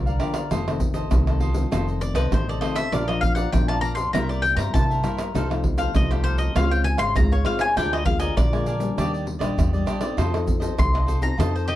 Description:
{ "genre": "samba and choro", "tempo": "99 BPM", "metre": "4/4", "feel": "straight", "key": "unclear", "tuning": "A4 = 440 Hz", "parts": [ { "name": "cavaquinho", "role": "accompaniment", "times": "0.0-11.7 s", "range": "D4 to Ab5", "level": "-31 LUFS", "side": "right 1 dB", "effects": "none" }, { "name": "nylon-string guitar", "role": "accompaniment", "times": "0.0-11.8 s", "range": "F2 to A4", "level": "-29 LUFS", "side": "left 4 dB", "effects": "none" }, { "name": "upright bass", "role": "bass", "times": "0.0-11.8 s", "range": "F1 to C3", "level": "-24 LUFS", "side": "equal", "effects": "none" }, { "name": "egg shaker, pandeiro, tamborim and surdo", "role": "percussion", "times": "0.1-11.8 s", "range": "none", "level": "-24 LUFS", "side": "right 1 dB", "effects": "none" }, { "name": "mandolin", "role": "melody", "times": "2.0-11.8 s", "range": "G4 to C6", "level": "-26 LUFS", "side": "left 2 dB", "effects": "none" } ], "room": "light reverb", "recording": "dark, warm production", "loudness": "-20 LUFS", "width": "side -14 dB against mid", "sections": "0.0-11.8 A section", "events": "mandolin solo 0.0-11.8", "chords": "0.0 Gm7; 0.5 F7; 2.9 Bb; 4.1 C7; 5.3 F7/C; 6.6 Dbmaj7; 7.8 Bb7/D; 9.0 Ebmaj7; 10.2 F7" }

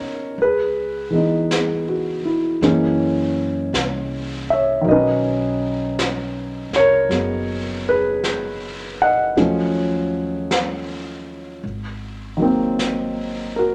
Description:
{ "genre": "jazz ballad", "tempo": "53 BPM", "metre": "4/4", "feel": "swing 66% on 8ths", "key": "unclear", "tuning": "A4 = 439 Hz", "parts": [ { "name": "warm concert grand piano", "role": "accompaniment", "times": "0.0-13.7 s", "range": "D#3 to F#5", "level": "-21 LUFS", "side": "equal", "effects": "none" }, { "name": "upright bass", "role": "bass", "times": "0.0-13.7 s", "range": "F#1 to F#2", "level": "-34 LUFS", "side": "equal", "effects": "none" }, { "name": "jazz brush drum kit", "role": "drums", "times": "0.4-13.7 s", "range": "brushed snare drum, hi-hat, snare drum", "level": "-30 LUFS", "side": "equal", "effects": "none" } ], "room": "moderate large studio reverb, RT60 1.2 s", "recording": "none", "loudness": "-20 LUFS", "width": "mono", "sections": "0.0-13.7 A section", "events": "none", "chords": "0.4 C#m9; 2.6 F#9; 4.9 Bmaj9; 9.4 D#m7b5; 11.6 G#7" }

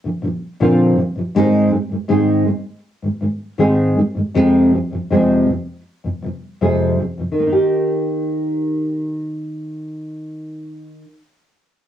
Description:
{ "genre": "pop", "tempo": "80 BPM", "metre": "4/4", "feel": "straight", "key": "Eb major", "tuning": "A4 = 440 Hz", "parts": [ { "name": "nylon-string guitar", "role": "accompaniment", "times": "0.0-11.3 s", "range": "F2 to Ab4", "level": "-16 LUFS", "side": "equal", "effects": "double-tracked left and right" } ], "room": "wet studio reverb, RT60 0.6 s", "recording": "home recording on cassette", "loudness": "-15 LUFS", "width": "side -11 dB against mid", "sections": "0.0-7.4 A section; 7.4-10.4 B section", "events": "none", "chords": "0.0 Bbadd9; 1.4 Ab; 4.4 Fm; 7.4 Eb" }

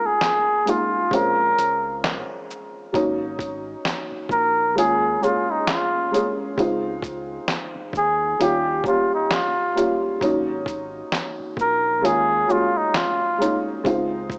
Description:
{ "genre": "lo-fi hip hop", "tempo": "66 BPM", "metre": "4/4", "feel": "swing 59% on 16ths", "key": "unclear", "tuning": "A4 = 442 Hz", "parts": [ { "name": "trumpet with cup mute", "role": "melody", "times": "0.0-13.7 s", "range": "Eb4 to Bb4", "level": "-23 LUFS", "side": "equal", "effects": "low-pass filter" }, { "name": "dark upright piano", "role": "accompaniment", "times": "0.0-14.4 s", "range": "Gb3 to Ab4", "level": "-26 LUFS", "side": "equal", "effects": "cassette tape, low-pass filter" }, { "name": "lo-fi sampler-style drum kit", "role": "drums", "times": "0.2-14.4 s", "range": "handclaps, hi-hat, kick drum, shaker, snare drum", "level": "-29 LUFS", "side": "equal", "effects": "none" }, { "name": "deep dub fingered electric bass", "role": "bass", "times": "1.1-14.4 s", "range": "Ab1 to Eb2", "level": "-38 LUFS", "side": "equal", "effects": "none" } ], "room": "moderate plate reverb, RT60 2.5 s", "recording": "worn, warbling old tape, cassette tape, warbly pitch drift, small speaker sound", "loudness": "-22 LUFS", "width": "mono", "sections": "0.0-2.9 A section; 2.9-14.4 B section", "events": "none", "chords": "0.0 Db6 (rootless); 1.1 Bbm7; 2.9 Ab9sus4; 4.8 Eb9sus4; 6.6 Dbmaj9; 8.4 Eb7; 10.2 Ab9sus4; 12.0 Eb9sus4; 13.8 Dbmaj9" }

